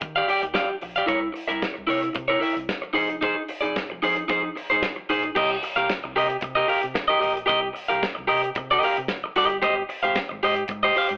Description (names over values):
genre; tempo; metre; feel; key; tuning
disco; 112 BPM; 4/4; straight; C minor; A4 = 440 Hz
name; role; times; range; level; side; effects
electric guitar at the edge of break-up; accompaniment; 0.0-11.1 s; Eb4 to G5; -21 LUFS; equal; none
fingered electric bass; bass; 0.0-11.2 s; F1 to Eb3; -40 LUFS; equal; none
damped 70s drum kit; drums; 0.0-11.2 s; crash cymbal, hi-hat, kick drum, snare drum; -30 LUFS; equal; none
room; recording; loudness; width
moderate studio reverb, RT60 0.8 s; band playing live in one room, telephone sound; -21 LUFS; side -31 dB against mid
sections
0.0-5.4 A section; 5.4-11.2 B section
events
none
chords
0.0 Ebmaj9; 1.1 C7b9; 3.0 Fm7; 5.4 Cm7; 9.6 Abmaj7